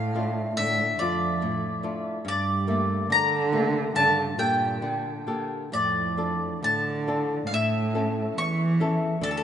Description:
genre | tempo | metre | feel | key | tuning
fado-style ballad | 66-72 BPM | 2/4 | rubato | D minor | A4 = 440 Hz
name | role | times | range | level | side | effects
mandolin | melody | 0.0-9.4 s | A4 to C#6 | -26 LUFS | left 1 dB | tape echo
dark cello | second line | 0.0-9.4 s | D2 to E3 | -28 LUFS | right 3 dB | none
flamenco guitar | accompaniment | 0.0-9.4 s | E2 to A4 | -30 LUFS | left 2 dB | none
room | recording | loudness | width
moderate lush hall reverb, RT60 3.0 s | rough home demo mix, nothing above 11.0 kHz | -23 LUFS | side -9 dB against mid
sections
0.0-9.4 A section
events
none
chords
0.0 Dm; 2.3 Gmadd9; 5.7 Dm; 7.5 A

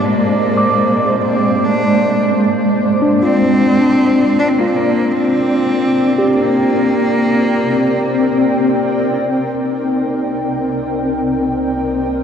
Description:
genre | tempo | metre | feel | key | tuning
ambient | 76 BPM | 4/4 | straight | unclear | A4 = 440 Hz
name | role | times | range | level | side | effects
warm cello | melody | 0.0-8.7 s | Bb3 to D4 | -18 LUFS | equal | shimmer reverb, diffuse ambient delay
granular cloud pad | sustained chords | 0.0-12.2 s | Ab3 to G5 | -15 LUFS | equal | built-in reverb, shimmer reverb
mellow tine electric piano | arpeggios | 0.0-9.5 s | D4 to D6 | -19 LUFS | equal | medium stereo tremolo, shimmer reverb, diffuse ambient delay
warm sub bass | bass | 9.5-12.2 s | C2 | -34 LUFS | equal | none
glass harmonica | texture | 9.7-12.2 s | Eb4 | -26 LUFS | right 1 dB | none
room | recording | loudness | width
wet huge ambient reverb, RT60 8.2 s | dark, warm production | -12 LUFS | side -8 dB against mid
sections
0.0-9.5 A section; 9.5-12.2 B section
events
none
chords
0.0 Bb9; 3.2 Csus2; 9.5 Cm9

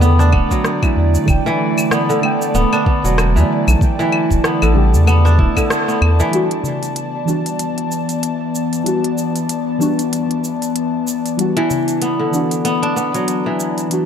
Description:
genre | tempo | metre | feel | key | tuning
organic downtempo | 95 BPM | 4/4 | swing 57% on 16ths | E minor | A4 = 440 Hz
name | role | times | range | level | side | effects
deep mellow chord stab | accompaniment | 0.0-14.1 s | D3 to G5 | -23 LUFS | equal | chorus, phaser, sidechain pumping, digital delay
airy breathy pad | sustained chords | 0.0-14.1 s | D3 to A5 | -20 LUFS | left 1 dB | chorus, sidechain pumping
kora | arpeggios | 0.0-7.7, 11.6-14.1 s | D3 to E4 | -18 LUFS | equal | digital delay
round analog bass | bass | 0.0-6.2 s | D1 to E2 | -12 LUFS | equal | sidechain pumping
organic electronic drum kit | drums | 0.0-14.1 s | claves, hi-hat, rim click, shaker | -23 LUFS | left 1 dB | none
electronic kick drum | drums | 0.3-5.7 s | none | -16 LUFS | equal | none
darbuka | percussion | 0.5-13.6 s | none | -28 LUFS | left 5 dB | none
room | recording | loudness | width
moderate echo chamber reverb, RT60 2.4 s | dark, warm production | -14 LUFS | side -8 dB against mid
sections
0.0-6.3 A section; 6.3-14.1 B section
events
break 5.7-6.3; band accent 5.7-6.0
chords
0.0 Em9

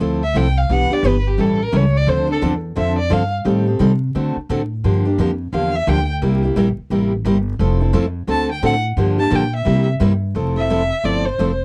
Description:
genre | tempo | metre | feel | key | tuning
acoustic string swing (jazz manouche) | 174 BPM | 4/4 | swing 62% on 8ths | F major | A4 = 442 Hz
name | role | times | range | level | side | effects
picked steel-string acoustic guitar | accompaniment | 0.0-11.5 s | C3 to A4 | -21 LUFS | equal | none
upright bass | bass | 0.0-11.6 s | F1 to D3 | -22 LUFS | equal | transformer saturation
warm violin | melody | 0.2-3.3, 5.5-6.1, 8.3-11.6 s | G4 to A5 | -24 LUFS | equal | none
room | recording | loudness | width
little or no reverb | dry, close 1970s-style studio recording, vinyl crackle | -18 LUFS | mono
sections
0.0-10.4 A section; 10.4-11.6 B section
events
violin solo 0.0-10.4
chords
0.0 Fmaj7; 0.7 Em7; 1.4 A7; 2.1 Dm7; 3.5 Am7b5; 4.1 D7; 4.8 Gm7; 6.2 C7; 7.6 Fmaj7; 8.3 D7; 9.0 Gm7; 9.7 C7; 10.4 Fmaj7

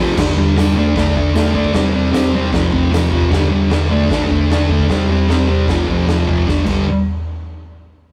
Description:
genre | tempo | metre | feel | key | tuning
garage rock duo or trio | 152 BPM | 4/4 | straight | unclear | A4 = 440 Hz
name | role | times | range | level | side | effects
thick fuzz guitar | riff | 0.0-6.8 s | F2 to D4 | -18 LUFS | equal | distortion
raw garage drum kit | drums | 0.2-6.8 s | crash cymbal, kick drum, snare drum, toms | -18 LUFS | equal | none
tambourine | percussion | 0.6-3.0 s | none | -43 LUFS | equal | none
room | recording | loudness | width
light reverb | rough rehearsal-room recording | -15 LUFS | mono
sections
0.2-6.5 A section; 6.5-8.1 B section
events
none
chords
0.2 G5; 0.8 D5; 1.7 C5; 2.5 F5; 3.3 G5; 3.9 D5; 4.9 C5; 5.7 F5; 6.5 G5

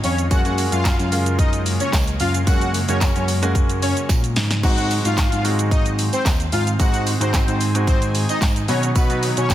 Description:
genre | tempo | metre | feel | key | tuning
dance-pop | 111 BPM | 4/4 | straight | unclear | A4 = 440 Hz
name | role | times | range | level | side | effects
soft supersaw | melody | 0.0-9.5 s | Cb4 to Gb5 | -25 LUFS | left 2 dB | sidechain pumping, digital delay
airy breathy pad | sustained chords | 0.0-9.5 s | Db3 to Ab4 | -30 LUFS | right 1 dB | none
bell-like tine electric piano | bass | 0.0-9.5 s | Db2 to Cb3 | -21 LUFS | equal | lush chorus, sidechain pumping
house drum kit | drums | 0.0-9.5 s | crash cymbal, handclaps, hi-hat, kick drum, shaker, snare drum | -20 LUFS | equal | none
tambourine | percussion | 0.0-9.5 s | none | -36 LUFS | right 13 dB | none
clear baby grand piano | accompaniment | 0.3-9.5 s | Gb3 to Gb4 | -26 LUFS | right 1 dB | sidechain pumping
room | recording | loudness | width
little or no reverb | dense, heavily limited modern master | -16 LUFS | side -12 dB against mid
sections
0.0-9.5 A section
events
drum fill 4.1-4.6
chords
0.3 Gbadd9; 4.6 Ab7; 8.7 Cb

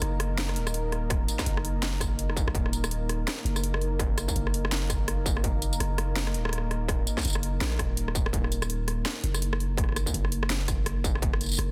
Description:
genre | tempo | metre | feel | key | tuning
half-time drum and bass | 166 BPM | 4/4 | swing 59% on 16ths, half-time | Eb minor | A4 = 439 Hz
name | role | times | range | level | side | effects
dark analog pad | sustained chords | 0.0-11.7 s | Bb3 to Bb4 | -38 LUFS | equal | chorus, sidechain pumping
long sustained 808-style bass | bass | 0.0-11.7 s | Eb1 to Bb1 | -32 LUFS | equal | none
drum and bass drum kit | drums | 0.0-11.7 s | hi-hat, rim click, snare drum, tambourine | -34 LUFS | equal | overdrive
electronic kick drum | drums | 1.1-11.3 s | none | -32 LUFS | equal | distortion
room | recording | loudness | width
little or no reverb | dense, heavily limited modern master | -28 LUFS | mono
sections
0.0-11.7 A section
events
none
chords
0.0 Eb5

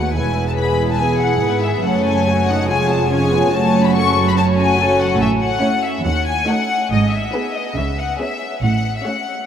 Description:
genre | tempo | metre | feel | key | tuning
quick classical-period movement for string orchestra | 142 BPM | 4/4 | rubato | unclear | A4 = 440 Hz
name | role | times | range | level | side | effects
clear studio violin section | melody | 0.0-9.5 s | D#5 to C#6 | -20 LUFS | left 6 dB | none
dark studio violin section | second line | 0.0-9.4 s | E4 to C#5 | -21 LUFS | left 2 dB | none
dark studio viola section | accompaniment | 0.0-9.4 s | G#3 to F#4 | -22 LUFS | right 2 dB | none
warm studio cello section | bass | 0.0-9.0 s | D#2 to C#3 | -21 LUFS | right 4 dB | none
warm studio double bass section | bass | 0.0-9.0 s | E1 to D#2 | -23 LUFS | right 3 dB | none
room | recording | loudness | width
wet cathedral reverb, RT60 6.5 s | in a vast, echoing space | -15 LUFS | side -8 dB against mid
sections
0.0-9.5 A section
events
none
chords
0.1 E; 1.8 F#m; 2.7 C#7/E#; 3.5 F#m; 5.2 A; 6.1 D#m7b5; 6.9 G#m; 7.8 C#m7; 8.6 F#m/A

